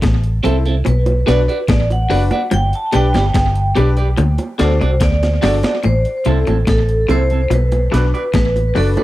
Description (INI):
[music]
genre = roots reggae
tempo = 72 BPM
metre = 4/4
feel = straight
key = A dorian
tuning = A4 = 441 Hz
[part]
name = twangy electric guitar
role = riff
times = 0.0-8.9 s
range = F#2 to D3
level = -23 LUFS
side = left 5 dB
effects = none
[part]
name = vintage muted fingered electric bass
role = bass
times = 0.0-9.0 s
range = F#1 to D2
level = -15 LUFS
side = equal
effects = none
[part]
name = breakbeat sampler-style drum kit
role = drums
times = 0.0-9.0 s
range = hi-hat, kick drum, snare drum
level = -20 LUFS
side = equal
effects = slapback echo
[part]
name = electric guitar at the edge of break-up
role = accompaniment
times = 0.4-9.0 s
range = C4 to D5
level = -23 LUFS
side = right 5 dB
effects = phaser, dub echo
[part]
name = warm grand piano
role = stabs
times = 0.4-9.0 s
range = C4 to B4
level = -22 LUFS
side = left 5 dB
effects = none
[part]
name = bongos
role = percussion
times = 0.4-9.0 s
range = none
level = -24 LUFS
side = right 4 dB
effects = none
[part]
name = vibraphone with medium mallets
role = melody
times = 0.9-9.0 s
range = A4 to A5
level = -20 LUFS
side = equal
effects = dub echo
[sound]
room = light reverb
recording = dry, close 1970s-style studio recording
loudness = -13 LUFS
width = side -16 dB against mid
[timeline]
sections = 0.0-5.8 A section; 5.8-9.0 B section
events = vibraphone solo 0.0-5.8; drum fill 5.0-5.8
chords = 0.0 Am; 0.9 Bm; 2.5 G; 4.2 D; 5.8 Am; 7.5 Bm